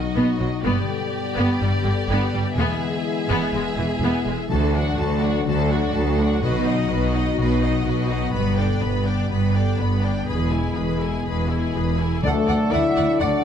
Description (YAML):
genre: cinematic, heroic adventure film score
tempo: 124 BPM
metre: 4/4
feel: straight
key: unclear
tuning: A4 = 439 Hz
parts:
  - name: clear symphonic violin section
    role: melody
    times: 0.0-13.4 s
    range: A4 to B5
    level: -33 LUFS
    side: left 4 dB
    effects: none
  - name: rich symphonic violin section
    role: second line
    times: 0.0-13.3 s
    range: F#4 to F#5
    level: -30 LUFS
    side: equal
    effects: none
  - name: warm French horn section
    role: sustained chords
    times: 0.0-13.4 s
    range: F#3 to E4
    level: -27 LUFS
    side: left 4 dB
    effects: none
  - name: concert harp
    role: arpeggios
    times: 0.0-13.4 s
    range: E2 to B4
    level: -28 LUFS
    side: left 11 dB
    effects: none
  - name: clear studio viola section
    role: accompaniment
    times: 0.2-13.3 s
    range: D3 to D5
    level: -28 LUFS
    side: equal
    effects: none
  - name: rich symphonic cello section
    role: bass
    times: 0.2-13.3 s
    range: D2 to B2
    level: -25 LUFS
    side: right 2 dB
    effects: none
  - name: rich symphonic double bass section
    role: bass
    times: 0.2-13.3 s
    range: E1 to D2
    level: -25 LUFS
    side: right 2 dB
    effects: none
  - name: timpani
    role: percussion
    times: 4.5-5.2, 12.2-12.9 s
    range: D3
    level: -31 LUFS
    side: equal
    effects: none
  - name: bright large flute ensemble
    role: second line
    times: 12.2-13.4 s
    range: F#5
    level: -30 LUFS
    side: left 1 dB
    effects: none
  - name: clear clarinet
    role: second line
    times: 12.2-13.4 s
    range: D5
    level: -32 LUFS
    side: left 2 dB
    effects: none
  - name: warm trombone section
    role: sustained chords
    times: 12.2-13.4 s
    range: F#3 to D4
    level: -30 LUFS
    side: right 4 dB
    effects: none
  - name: mellow trumpet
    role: stabs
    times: 12.2-13.4 s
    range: A4 to E5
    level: -25 LUFS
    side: right 2 dB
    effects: none
room: light reverb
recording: close, detailed microphones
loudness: -19 LUFS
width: side -8 dB against mid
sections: 0.0-12.2 A section; 12.2-13.4 B section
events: build-up 0.0-12.2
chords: 0.0 B; 0.6 G; 2.6 E; 4.5 D; 6.4 B; 8.3 G; 10.3 E; 12.2 D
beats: 0.16 | 0.65 1.13 1.61 2.09 | 2.58 3.06 3.54 4.02 | 4.50 4.98 5.46 5.94 | 6.42 6.90 7.38 7.86 | 8.35 8.83 9.31 9.80 | 10.29 10.78 11.27 11.76 | 12.24 12.73 13.21